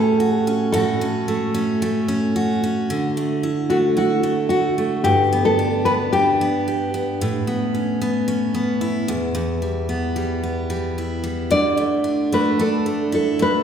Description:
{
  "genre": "pop",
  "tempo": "111 BPM",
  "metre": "4/4",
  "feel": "swing 55% on 16ths",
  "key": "D major",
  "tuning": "A4 = 440 Hz",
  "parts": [
    { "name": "nylon-string guitar", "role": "melody", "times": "0.0-6.9, 11.5-13.6 s", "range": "F#4 to D5", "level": "-20 LUFS", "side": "left 1 dB", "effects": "none" },
    { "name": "picked steel-string acoustic guitar", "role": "accompaniment", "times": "0.0-13.6 s", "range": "E2 to G4", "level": "-20 LUFS", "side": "right 1 dB", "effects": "none" }
  ],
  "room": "wet scoring stage reverb, RT60 1.7 s",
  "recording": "recorded in a church or concert hall",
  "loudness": "-18 LUFS",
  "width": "side -8 dB against mid",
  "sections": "0.0-2.9 A section; 2.9-13.6 B section",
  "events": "none",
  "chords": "0.0 A6; 2.9 Dadd9; 5.0 G; 7.2 Aadd9; 9.1 Em; 11.5 Dsus2"
}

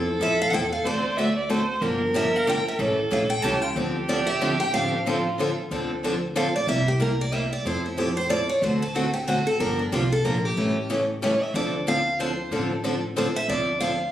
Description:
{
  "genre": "acoustic string swing (jazz manouche)",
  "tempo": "185 BPM",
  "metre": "3/4",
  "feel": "swing 59% on 8ths",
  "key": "D minor",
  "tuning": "A4 = 435 Hz",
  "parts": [
    { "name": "warm violin", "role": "second line", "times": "0.0-5.5 s", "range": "F4 to E5", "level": "-26 LUFS", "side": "right 1 dB", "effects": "none" },
    { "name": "picked steel-string acoustic guitar", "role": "accompaniment", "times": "0.0-13.9 s", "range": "C3 to A4", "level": "-27 LUFS", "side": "left 2 dB", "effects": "none" },
    { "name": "upright bass", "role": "bass", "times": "0.0-14.1 s", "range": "G1 to F2", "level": "-31 LUFS", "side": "equal", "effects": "none" },
    { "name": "picked steel-string acoustic guitar", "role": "melody", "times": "0.2-14.1 s", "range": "D4 to A5", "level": "-26 LUFS", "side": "right 1 dB", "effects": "none" },
    { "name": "picked steel-string acoustic guitar", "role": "accompaniment", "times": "1.8-13.3 s", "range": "C3 to A4", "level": "-30 LUFS", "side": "right 4 dB", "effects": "none" }
  ],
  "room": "wet club reverb, RT60 0.6 s",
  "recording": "recorded on a phone in the room, studio reverb, compression",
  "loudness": "-22 LUFS",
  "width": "side -12 dB against mid",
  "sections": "0.0-5.7 A section; 5.7-13.5 B section",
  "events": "steel-string acoustic guitar solo 5.7-14.1",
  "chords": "0.0 Fmaj7; 0.8 D7; 1.8 Gm7; 2.8 A7; 3.8 Dm7; 6.7 C7; 7.7 Fmaj7; 8.6 D7; 9.6 Gm7; 10.6 A7; 11.5 Dm7"
}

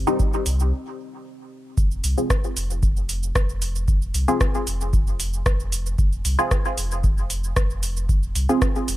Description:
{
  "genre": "dub techno",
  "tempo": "114 BPM",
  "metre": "4/4",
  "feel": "straight",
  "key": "F minor",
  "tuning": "A4 = 440 Hz",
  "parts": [
    { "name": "deep dark ambient pad", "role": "sustained chords", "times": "0.0-1.7 s", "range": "C4 to G4", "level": "-41 LUFS", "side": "right 1 dB", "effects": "chorus, built-in reverb, sidechain pumping" },
    { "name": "warm sub bass", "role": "bass", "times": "0.0-9.0 s", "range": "F1 to C2", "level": "-25 LUFS", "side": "equal", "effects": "tube saturation, sidechain pumping" },
    { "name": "filtered dub chord stab", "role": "stabs", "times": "0.1-9.0 s", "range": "G3 to Ab4", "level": "-24 LUFS", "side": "equal", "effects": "phaser, sidechain pumping, dub echo" },
    { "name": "booming analog drum machine", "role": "drums", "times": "0.1-9.0 s", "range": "cabasa, hi-hat, rim click", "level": "-28 LUFS", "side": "right 1 dB", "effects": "none" },
    { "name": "electronic kick drum", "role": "drums", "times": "0.2-8.7 s", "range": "none", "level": "-21 LUFS", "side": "equal", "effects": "none" }
  ],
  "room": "little or no reverb",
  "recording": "none",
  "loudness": "-20 LUFS",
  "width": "side -15 dB against mid",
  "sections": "0.0-1.8 A section; 1.8-9.0 A section",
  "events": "break 0.7-1.8",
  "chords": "0.0 Cm; 1.8 Fm"
}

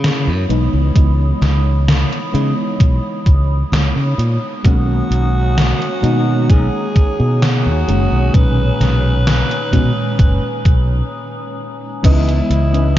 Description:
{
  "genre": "vaporwave",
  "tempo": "65 BPM",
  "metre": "4/4",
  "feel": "straight",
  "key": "B major",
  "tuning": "A4 = 440 Hz",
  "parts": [
    { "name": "mellow FM electric piano", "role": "accompaniment", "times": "0.0-13.0 s", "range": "A#2 to D#5", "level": "-22 LUFS", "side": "equal", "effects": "tremolo, ensemble chorus, analog delay" },
    { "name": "warbly tape-like pad", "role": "sustained chords", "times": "0.0-13.0 s", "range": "C#5 to D#6", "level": "-27 LUFS", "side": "right 1 dB", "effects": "chorus, built-in reverb" },
    { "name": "modern bright fingered electric bass", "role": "bass", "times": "0.0-13.0 s", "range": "F#1 to C#3", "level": "-15 LUFS", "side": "equal", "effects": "none" },
    { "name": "gated 80s digital drum machine", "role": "drums", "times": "0.0-13.0 s", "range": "crash cymbal, hi-hat, snare drum", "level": "-21 LUFS", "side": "equal", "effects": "gated reverb, gated reverb snare, overdrive" },
    { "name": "electronic kick drum", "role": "drums", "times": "1.0-12.2 s", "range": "none", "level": "-11 LUFS", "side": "equal", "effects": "overdrive" },
    { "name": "growling alto saxophone", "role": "melody", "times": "4.7-13.0 s", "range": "E4 to B4", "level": "-24 LUFS", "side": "equal", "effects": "tape echo" },
    { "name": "mellow electric guitar", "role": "riff", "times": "12.0-13.0 s", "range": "C#4 to B4", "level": "-24 LUFS", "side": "left 2 dB", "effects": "analog chorus" }
  ],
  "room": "light reverb",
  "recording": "cassette tape, nothing above 7.5 kHz",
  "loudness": "-12 LUFS",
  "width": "side -13 dB against mid",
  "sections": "0.0-12.0 A section",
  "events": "break 11.1-12.0",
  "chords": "0.0 C#m9; 4.7 Bmaj13; 12.0 C#m9"
}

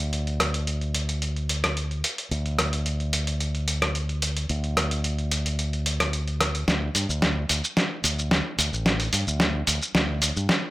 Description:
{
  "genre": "nu-disco, nu disco",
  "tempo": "110 BPM",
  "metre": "4/4",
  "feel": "straight",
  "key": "unclear",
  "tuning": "A4 = 443 Hz",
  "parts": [
    { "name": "fingered electric bass with an envelope filter", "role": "bass", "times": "0.0-10.5 s", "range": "A1 to G2", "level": "-26 LUFS", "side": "equal", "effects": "none" },
    { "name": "dusty soul sampler-style drum kit", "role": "drums", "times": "0.0-10.6 s", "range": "hi-hat, rim click, shaker, snare drum", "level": "-24 LUFS", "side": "equal", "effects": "none" }
  ],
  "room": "light reverb",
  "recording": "dry, gritty hardware recording",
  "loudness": "-22 LUFS",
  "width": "side -18 dB against mid",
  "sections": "0.0-6.7 A section; 6.7-10.7 B section",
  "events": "build-up 6.7-10.7; drum fill 6.7-10.7",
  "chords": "none"
}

